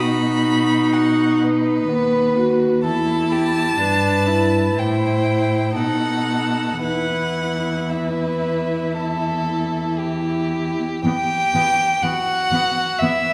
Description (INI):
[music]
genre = classical, slow romantic movement for string quartet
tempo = 56-63 BPM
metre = 4/4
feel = rubato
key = E minor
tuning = A4 = 440 Hz
[part]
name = clear violin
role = melody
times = 0.0-13.3 s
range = E4 to B5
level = -28 LUFS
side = equal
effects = none
[part]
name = rich violin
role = second line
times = 0.0-13.3 s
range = F#4 to G5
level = -24 LUFS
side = equal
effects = none
[part]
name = rich viola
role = accompaniment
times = 0.0-13.1 s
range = B3 to F#4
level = -24 LUFS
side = equal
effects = none
[part]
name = rich cello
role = bass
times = 0.0-13.1 s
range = D#2 to B2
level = -25 LUFS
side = equal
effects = none
[sound]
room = wet recital hall reverb, RT60 1.4 s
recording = recorded in a church or concert hall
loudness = -20 LUFS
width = mono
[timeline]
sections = 0.0-11.0 A section; 11.0-13.3 A section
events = none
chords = 0.0 B; 2.8 Em; 4.8 Am7; 5.8 B7; 6.8 Em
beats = 0.92 1.88 | 2.83 3.80 4.76 5.77 | 6.82 7.90 8.95 10.00 | 11.04 12.04 13.01